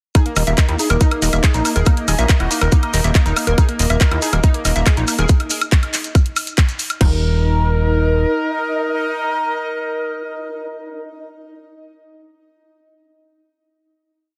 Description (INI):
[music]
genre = psychedelic trance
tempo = 140 BPM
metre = 4/4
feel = straight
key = unclear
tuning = A4 = 444 Hz
[part]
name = overdriven synth lead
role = melody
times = 0.1-11.0 s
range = Bb3 to Bb4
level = -26 LUFS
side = equal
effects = distortion, chorus, phaser, sidechain pumping, delay
[part]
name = bubbling stepped-filter texture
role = sustained chords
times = 1.0-11.0 s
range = Eb4 to Eb5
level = -30 LUFS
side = equal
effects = chorus, built-in reverb, sidechain pumping
[part]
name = woody wave-folded pluck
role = riff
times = 0.1-7.2 s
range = Eb4 to Fb5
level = -27 LUFS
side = equal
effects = chorus, sidechain pumping, delay
[part]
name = garage drum kit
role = drums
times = 0.1-7.1 s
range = crash cymbal, kick drum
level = -16 LUFS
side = equal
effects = small room ambience
[part]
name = garage drum kit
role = drums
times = 0.1-7.0 s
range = handclaps, hi-hat, woodblock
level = -24 LUFS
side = equal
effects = small room ambience
[part]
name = maracas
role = percussion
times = 0.2-7.0 s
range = none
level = -29 LUFS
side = equal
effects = none
[part]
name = plucky analog bass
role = bass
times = 0.4-8.3 s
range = Eb1 to Eb2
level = -20 LUFS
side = equal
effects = none
[sound]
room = light reverb, digital ambience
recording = dense, heavily limited modern master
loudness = -17 LUFS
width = mono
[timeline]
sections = 0.1-7.0 groove; 7.0-10.4 final chord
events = none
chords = 0.1 Eb5